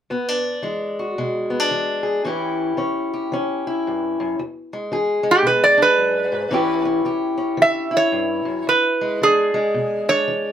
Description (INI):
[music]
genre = acoustic country blues, solo or duo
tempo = 112 BPM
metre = 4/4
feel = swing 62% on 8ths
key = E mixolydian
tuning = A4 = 440 Hz
[part]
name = fingerpicked steel-string acoustic guitar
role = accompaniment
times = 0.1-10.5 s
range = E2 to G#4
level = -21 LUFS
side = left 2 dB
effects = none
[part]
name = metal-body resonator slide guitar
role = melody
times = 5.3-10.5 s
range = G4 to E5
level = -16 LUFS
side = right 2 dB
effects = none
[sound]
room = moderate studio reverb, RT60 0.6 s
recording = none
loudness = -17 LUFS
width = side -9 dB against mid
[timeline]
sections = 0.1-4.4 A section; 4.4-10.5 B section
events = none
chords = 0.1 E7; 2.2 A7; 4.4 E7; 6.5 A7; 8.7 E7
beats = | 0.10 0.64 1.18 1.71 | 2.25 2.79 3.32 3.86 | 4.39 4.93 5.46 6.00 | 6.53 7.06 7.60 8.13 | 8.66 9.20 9.73 10.26